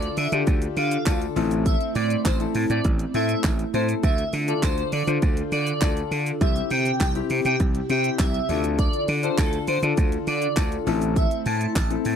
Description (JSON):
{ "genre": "dance-pop", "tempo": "101 BPM", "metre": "4/4", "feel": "straight", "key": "unclear", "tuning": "A4 = 439 Hz", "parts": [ { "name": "airy dreamy lead", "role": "melody", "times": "0.0-11.9 s", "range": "A4 to A5", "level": "-29 LUFS", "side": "right 1 dB", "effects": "chorus, tape echo" }, { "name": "warm baby grand piano", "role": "accompaniment", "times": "0.0-12.2 s", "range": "C4 to C5", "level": "-29 LUFS", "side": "left 17 dB", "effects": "sidechain pumping" }, { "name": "airy breathy pad", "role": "sustained chords", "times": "0.0-12.2 s", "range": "C3 to A4", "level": "-30 LUFS", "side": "right 3 dB", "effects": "chorus, sidechain pumping" }, { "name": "gritty slap bass", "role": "bass", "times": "0.0-12.2 s", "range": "A1 to D3", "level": "-25 LUFS", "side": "right 1 dB", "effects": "overdrive, sidechain pumping" }, { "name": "house drum kit", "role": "drums", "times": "0.0-12.2 s", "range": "handclaps, hi-hat, kick drum, shaker, snare drum", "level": "-24 LUFS", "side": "right 1 dB", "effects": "none" }, { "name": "tambourine", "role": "percussion", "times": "0.2-12.2 s", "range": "none", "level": "-46 LUFS", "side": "right 30 dB", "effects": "none" } ], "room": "little or no reverb", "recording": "dry, close 1970s-style studio recording", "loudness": "-20 LUFS", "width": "side -8 dB against mid", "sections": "0.0-12.2 A section", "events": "none", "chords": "0.0 Dm; 1.4 Am; 4.0 Dm; 6.4 C; 8.5 Dm; 10.9 Am", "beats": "0.47 1.06 | 1.66 2.25 2.85 3.44 | 4.03 4.63 5.22 5.82 | 6.41 7.00 7.60 8.19 | 8.79 9.38 9.97 10.57 | 11.16 11.76" }